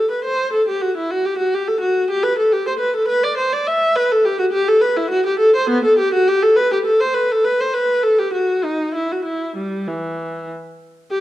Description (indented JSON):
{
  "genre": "classical, baroque-style suite movement for unaccompanied viola",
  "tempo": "103 BPM",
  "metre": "3/4",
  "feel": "rubato",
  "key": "G major, E minor from 4.0 s",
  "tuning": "A4 = 440 Hz",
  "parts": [
    { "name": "rich viola", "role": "solo", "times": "0.0-11.2 s", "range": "E3 to E5", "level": "-16 LUFS", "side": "equal", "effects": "none" }
  ],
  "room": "wet recital hall reverb, RT60 1.3 s",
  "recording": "dark, warm production",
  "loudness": "-15 LUFS",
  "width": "side -14 dB against mid",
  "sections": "0.0-11.1 A section",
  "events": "none",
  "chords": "none"
}